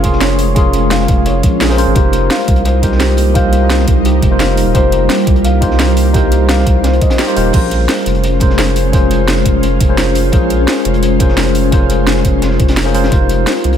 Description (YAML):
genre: liquid drum and bass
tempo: 172 BPM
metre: 4/4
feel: straight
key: Bb dorian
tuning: A4 = 441 Hz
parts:
  - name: tine electric piano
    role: accompaniment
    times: 0.0-13.8 s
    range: Db4 to C6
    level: -17 LUFS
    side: left 1 dB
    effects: medium stereo tremolo, ping-pong delay
  - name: ethereal airy pad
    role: sustained chords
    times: 0.0-13.8 s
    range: G3 to C5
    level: -18 LUFS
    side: left 1 dB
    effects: ensemble chorus, built-in reverb, sidechain pumping
  - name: felt-muted upright piano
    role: arpeggios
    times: 0.0-7.6 s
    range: G4 to F5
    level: -20 LUFS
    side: left 3 dB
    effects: ping-pong delay
  - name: saturated sub bass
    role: bass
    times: 0.0-13.8 s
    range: Eb1 to C2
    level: -14 LUFS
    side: equal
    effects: none
  - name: crunchy breakbeat drum kit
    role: drums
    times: 0.0-13.8 s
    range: hi-hat, snare drum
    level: -25 LUFS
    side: equal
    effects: high-pass filter on hats, high-pass filter on snare, high-pass filter on room
  - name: drum and bass drum kit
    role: drums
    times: 0.0-13.7 s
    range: crash cymbal, hi-hat, snare drum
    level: -19 LUFS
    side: equal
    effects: overdrive
  - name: electronic kick drum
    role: drums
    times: 0.0-13.2 s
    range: none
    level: -13 LUFS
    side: equal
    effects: overdrive
room: small room ambience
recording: none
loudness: -9 LUFS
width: side -9 dB against mid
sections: 0.0-7.5 A section; 7.5-13.8 A section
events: drop 0.0-7.5, 7.5-13.8; band accent 7.2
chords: 0.0 Bbm9; 2.0 F9sus4; 7.5 Bbm9; 13.1 F9sus4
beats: 0.21 | 0.56 0.91 1.26 1.61 | 1.96 2.31 2.65 3.00 | 3.35 3.70 4.05 4.40 | 4.75 5.10 5.45 5.79 | 6.14 6.49 6.84 7.19 | 7.54 7.89 8.24 8.59 | 8.93 9.28 9.63 9.98 | 10.33 10.68 11.03 11.38 | 11.72 12.07 12.42 12.77 | 13.12 13.47